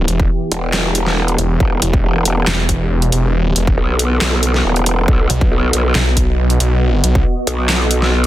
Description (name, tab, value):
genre	heavy wobble dubstep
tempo	138 BPM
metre	4/4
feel	half-time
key	E harmonic minor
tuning	A4 = 440 Hz
part	supersaw chords	sustained chords	0.0-8.3 s	E3 to D#5	-22 LUFS	equal	sidechain pumping, low-pass filter
part	snarling distorted saw bass	bass	0.0-7.2 s	E1 to B1	-15 LUFS	equal	distortion, overdrive
part	dubstep drum kit	drums	0.1-8.3 s	handclaps, hi-hat, snare drum	-18 LUFS	equal	overdrive
part	electronic kick drum	drums	0.2-7.2 s	none	-16 LUFS	equal	none
part	growl bass	bass	0.5-8.3 s	E1 to B1	-15 LUFS	equal	chorus, overdrive
room	little or no reverb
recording	dense, heavily limited modern master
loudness	-13 LUFS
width	side -14 dB against mid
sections	0.0-8.3 A section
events	none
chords	0.0 Em; 5.1 B